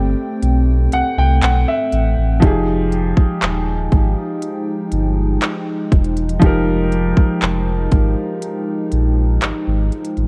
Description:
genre	contemporary R&B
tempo	60 BPM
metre	4/4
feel	straight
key	unclear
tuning	A4 = 440 Hz
part	clear concert grand piano	accompaniment	0.0-10.3 s	F3 to G5	-23 LUFS	equal	none
part	hollow soft pad	sustained chords	0.0-10.3 s	F3 to G5	-26 LUFS	equal	chorus
part	sub bass with octave	bass	0.0-10.3 s	Eb1 to C2	-20 LUFS	equal	none
part	trap drum kit	drums	0.4-10.3 s	handclaps, hi-hat, kick drum	-17 LUFS	equal	none
room	little or no reverb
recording	worn, warbling old tape, cassette tape, warbly pitch drift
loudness	-17 LUFS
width	mono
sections	0.0-10.3 A section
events	break 0.0-2.4; grand piano fill 0.4-2.4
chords	0.0 Am9; 2.4 Fm9

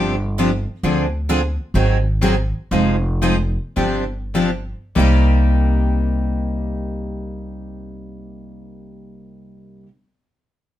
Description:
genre	acoustic string swing (jazz manouche)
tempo	93-133 BPM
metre	4/4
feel	swing 63% on 8ths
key	C minor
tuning	A4 = 440 Hz
part	picked steel-string acoustic guitar	accompaniment	0.0-9.9 s	C3 to Ab4	-22 LUFS	left 4 dB	none
part	picked steel-string acoustic guitar	accompaniment	0.0-9.9 s	C3 to C5	-25 LUFS	right 7 dB	none
part	upright bass	bass	0.0-9.8 s	F1 to D2	-19 LUFS	equal	none
room	light reverb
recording	minimal, uncompressed stereo recording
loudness	-17 LUFS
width	side -12 dB against mid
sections	0.0-5.0 A section; 5.0-10.1 B section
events	slowing down 0.8-5.0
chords	0.0 G7sus4; 0.8 Dm7b5; 1.7 Ab7; 2.7 Fm7; 3.8 G7sus4; 5.0 Cm7

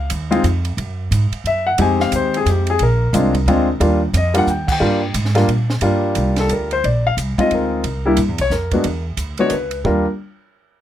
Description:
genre	jazz piano trio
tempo	179 BPM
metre	3/4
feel	swing 63% on 8ths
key	Eb major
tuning	A4 = 441 Hz
part	warm grand piano	melody	0.0-10.1 s	G3 to Ab5	-17 LUFS	left 2 dB	none
part	upright bass	bass	0.0-10.0 s	Bb1 to Bb2	-19 LUFS	right 1 dB	none
part	compact cocktail drum kit	drums	0.1-9.9 s	crash cymbal, hi-hat, kick drum, ride cymbal, snare drum	-27 LUFS	right 3 dB	none
room	light reverb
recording	none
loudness	-15 LUFS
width	side -11 dB against mid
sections	0.0-5.8 A section; 5.8-9.8 B section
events	band accent 4.6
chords	0.0 N.C.; 0.8 Gbsus2; 1.8 Fm9; 2.8 Bb7; 3.8 Ebmaj7; 5.8 Gm7; 6.8 Bb7sus4; 7.8 C7(no3); 8.8 E7(no3); 9.8 Eb5

